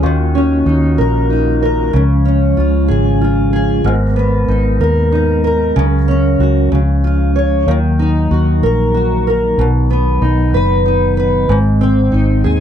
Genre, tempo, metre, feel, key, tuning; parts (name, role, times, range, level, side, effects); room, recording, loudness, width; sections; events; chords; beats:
pop; 63 BPM (dotted quarters); 6/8; straight; A4 = 440 Hz
fingerpicked acoustic archtop guitar; accompaniment; 0.0-12.6 s; G#2 to C#5; -15 LUFS; equal; double-tracked left and right
percussive tonewheel organ; sustained chords; 0.0-12.6 s; D#3 to A#4; -19 LUFS; left 1 dB; fast rotary speaker
vintage muted fingered electric bass; bass; 0.0-12.6 s; F#1 to D#2; -14 LUFS; equal
little or no reverb; dry, close 1970s-style studio recording; -11 LUFS; side -9 dB against mid
0.0-12.6 A section
0.0 D#m7; 1.9 C#; 3.8 G#madd9; 5.8 F#/C#; 6.7 C#; 7.7 D#m; 9.6 B; 11.5 G#
| 0.03 0.98 | 1.94 2.89 | 3.85 4.80 | 5.76 6.72 | 7.67 8.63 | 9.58 10.54 | 11.49 12.45